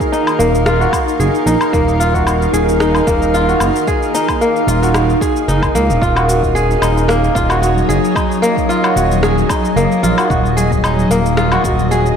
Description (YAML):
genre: organic downtempo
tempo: 112 BPM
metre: 4/4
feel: swing 54% on 16ths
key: Eb minor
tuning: A4 = 440 Hz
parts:
  - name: granular cloud pad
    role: sustained chords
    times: 0.0-12.2 s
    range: Gb3 to F5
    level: -18 LUFS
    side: equal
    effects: built-in reverb, sidechain pumping
  - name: kora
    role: arpeggios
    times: 0.0-12.2 s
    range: Bb3 to Ab4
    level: -16 LUFS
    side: equal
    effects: low-pass filter, digital delay
  - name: electronic kick drum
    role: drums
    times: 0.0-11.8 s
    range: none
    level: -21 LUFS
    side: equal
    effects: overdrive, studio reverb
  - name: electronic shaker, woodblock and rim click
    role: drums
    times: 0.0-12.2 s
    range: none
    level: -22 LUFS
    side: left 2 dB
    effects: overdrive, studio reverb
  - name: wind-like tuned noise texture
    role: texture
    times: 0.1-12.2 s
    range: Eb4 to Eb5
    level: -27 LUFS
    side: right 1 dB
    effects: built-in reverb
  - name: smooth gliding synth bass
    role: bass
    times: 0.4-12.1 s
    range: Eb1 to Db2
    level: -16 LUFS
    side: equal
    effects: sidechain pumping
room: moderate scoring stage reverb, RT60 1.9 s, digital ambience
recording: blown-out, overdriven recording, overdrive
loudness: -12 LUFS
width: side -7 dB against mid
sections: 0.0-12.2 A section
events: none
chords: 0.0 Ebm11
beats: 0.12 0.66 1.20 | 1.73 2.27 2.80 3.34 | 3.87 4.41 4.95 5.48 | 6.02 6.55 7.09 7.62 | 8.16 8.70 9.23 9.77 | 10.30 10.84 11.37 11.91